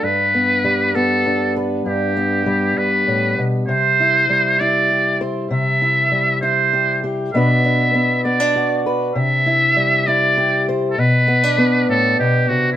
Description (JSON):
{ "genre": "folk", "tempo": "66 BPM (dotted quarters)", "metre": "6/8", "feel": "straight", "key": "G major", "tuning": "A4 = 441 Hz", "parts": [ { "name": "trumpet with metal mute", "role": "melody", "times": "0.0-12.8 s", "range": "E4 to E5", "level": "-16 LUFS", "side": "right 1 dB", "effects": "none" }, { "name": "fingerpicked acoustic archtop guitar", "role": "accompaniment", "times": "0.0-12.8 s", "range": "G2 to C5", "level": "-18 LUFS", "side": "equal", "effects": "none" } ], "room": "moderate stone room reverb, RT60 1.0 s", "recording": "band playing live in one room", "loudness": "-14 LUFS", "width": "side -11 dB against mid", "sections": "0.0-12.8 A section", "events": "none", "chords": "0.0 G; 3.7 C; 7.3 Bm; 9.2 Cadd9; 11.0 Bm" }